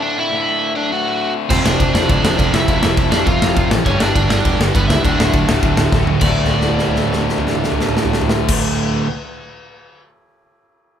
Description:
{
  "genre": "punk rock",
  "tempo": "204 BPM",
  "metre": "4/4",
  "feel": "straight",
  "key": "unclear",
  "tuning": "A4 = 440 Hz",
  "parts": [
    { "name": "crunchy overdriven guitar", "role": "melody", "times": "0.0-8.5 s", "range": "B3 to F#5", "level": "-20 LUFS", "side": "right 2 dB", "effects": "none" },
    { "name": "tight distorted guitar", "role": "riff", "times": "0.0-9.1 s", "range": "D2 to G3", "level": "-22 LUFS", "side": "left 6 dB", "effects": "distortion" },
    { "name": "distorted electric guitar", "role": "riff", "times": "1.5-9.1 s", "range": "D2 to G4", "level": "-24 LUFS", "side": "equal", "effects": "overdrive" },
    { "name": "sludgy distorted guitar", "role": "riff", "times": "1.5-9.1 s", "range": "D2 to G3", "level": "-22 LUFS", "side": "right 7 dB", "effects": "overdrive" },
    { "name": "picked electric bass", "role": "bass", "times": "1.5-8.5 s", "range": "D1 to C#2", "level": "-20 LUFS", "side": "equal", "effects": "none" },
    { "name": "big rock drum kit", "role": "drums", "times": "1.5-10.0 s", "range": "crash cymbal, kick drum, ride cymbal, snare drum, toms", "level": "-18 LUFS", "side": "equal", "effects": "none" }
  ],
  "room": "light reverb",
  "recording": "band playing live in one room",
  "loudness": "-13 LUFS",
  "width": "side -9 dB against mid",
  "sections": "0.0-6.2 A section; 6.2-8.6 B section",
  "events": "drum fill 5.9, 6.4-8.5",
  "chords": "0.0 D; 1.5 F; 3.9 G; 5.0 D",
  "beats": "0.02 | 0.31 0.61 0.91 1.20 | 1.50 1.79 2.09 2.38 | 2.68 2.97 3.27 3.56 | 3.86 4.15 4.45 4.74 | 5.04 5.33 5.62 5.92 | 6.21 6.51 6.80 7.09 | 7.39 7.68 7.97 8.27"
}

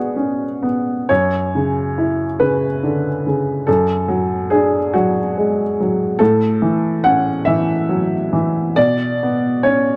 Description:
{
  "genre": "neoclassical minimalist piano",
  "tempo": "47 BPM (dotted quarters)",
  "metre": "6/8",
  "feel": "uneven beats, rubato",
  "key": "A major",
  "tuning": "A4 = 440 Hz",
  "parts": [
    { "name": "warm upright piano", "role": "solo", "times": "0.0-10.0 s", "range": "F#2 to F#5", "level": "-18 LUFS", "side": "equal", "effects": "none" }
  ],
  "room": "light reverb",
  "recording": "dark, warm production",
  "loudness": "-18 LUFS",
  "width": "mono",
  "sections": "0.0-10.0 A section",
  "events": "none",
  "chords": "0.0 Bmadd9; 1.1 F#5; 3.7 D/F#; 6.2 A6; 8.8 Bmadd9",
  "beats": "| 1.10 2.40 | 3.67 4.94 | 6.20 7.46 | 8.76"
}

